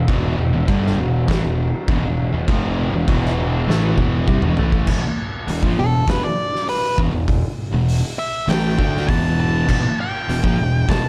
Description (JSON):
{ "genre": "stoner and doom metal", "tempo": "100 BPM", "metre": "4/4", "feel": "straight", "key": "E minor", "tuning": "A4 = 438 Hz", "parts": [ { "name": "distorted electric guitar", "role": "riff", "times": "0.0-11.0 s", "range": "E2 to D4", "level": "-30 LUFS", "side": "equal", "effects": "overdrive" }, { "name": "thick fuzz guitar", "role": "riff", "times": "0.0-11.0 s", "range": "E2 to D4", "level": "-27 LUFS", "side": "equal", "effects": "none" }, { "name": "thick fuzz guitar", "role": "riff", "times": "0.0-11.0 s", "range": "E2 to D4", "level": "-25 LUFS", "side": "equal", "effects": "distortion" }, { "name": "fuzz fingered electric bass", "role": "bass", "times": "0.0-11.0 s", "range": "E1 to D2", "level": "-26 LUFS", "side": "equal", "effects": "overdrive, tube saturation" }, { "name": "oversized low-tuned drum kit", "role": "drums", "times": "0.1-11.0 s", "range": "crash cymbal, hi-hat, kick drum, snare drum, toms", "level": "-24 LUFS", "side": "equal", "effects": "none" }, { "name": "octave-fuzz lead guitar", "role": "melody", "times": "5.8-11.1 s", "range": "A4 to A5", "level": "-25 LUFS", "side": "equal", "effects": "distortion, slapback echo" } ], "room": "light reverb", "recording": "dark, warm production", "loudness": "-19 LUFS", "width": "mono", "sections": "0.0-4.9 A section; 4.9-11.1 B section", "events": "drum fill 3.7-4.9; lead electric guitar solo 4.9-11.1", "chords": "0.0 Em" }